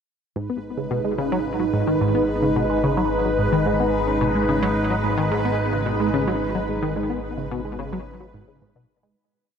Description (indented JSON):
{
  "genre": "ambient, sequencer-driven space music",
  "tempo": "109 BPM",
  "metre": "4/4",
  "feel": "straight",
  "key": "G# minor",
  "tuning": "A4 = 441 Hz",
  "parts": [
    { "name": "phased analog pad", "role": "sustained chords", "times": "0.4-9.1 s", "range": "G#3 to B4", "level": "-24 LUFS", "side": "right 1 dB", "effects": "phaser, chorus, shimmer reverb" },
    { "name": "tight sequenced synth", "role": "riff", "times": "0.4-9.2 s", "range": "G#2 to B3", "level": "-24 LUFS", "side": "equal", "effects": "chorus, phaser, tape echo" },
    { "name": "fat analog bass", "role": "bass", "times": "0.4-9.1 s", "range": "G#1", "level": "-29 LUFS", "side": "equal", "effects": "none" },
    { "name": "bubbling stepped-filter texture", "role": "texture", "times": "0.8-9.2 s", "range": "B4", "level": "-30 LUFS", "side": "left 1 dB", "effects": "chorus, built-in reverb, shimmer reverb" }
  ],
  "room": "wet huge ambient reverb, RT60 7.5 s",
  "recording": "none",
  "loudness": "-20 LUFS",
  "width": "side -7 dB against mid",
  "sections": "0.4-9.2 A section",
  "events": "fade-out 6.2-9.2",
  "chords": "0.4 G#m"
}